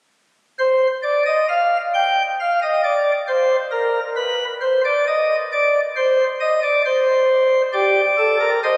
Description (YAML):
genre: classical, baroque-style 4-part fugue for pipe organ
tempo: 67 BPM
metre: 4/4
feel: straight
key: unclear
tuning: A4 = 438 Hz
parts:
  - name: pipe organ, sparkling flutes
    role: solo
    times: 0.6-8.8 s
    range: G4 to G5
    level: -18 LUFS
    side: equal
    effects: none
room: wet cathedral reverb, RT60 4.9 s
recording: recorded on a phone in the room, studio reverb, compression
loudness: -18 LUFS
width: mono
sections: 0.6-8.8 A section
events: none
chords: 0.6 N.C.; 7.7 Gm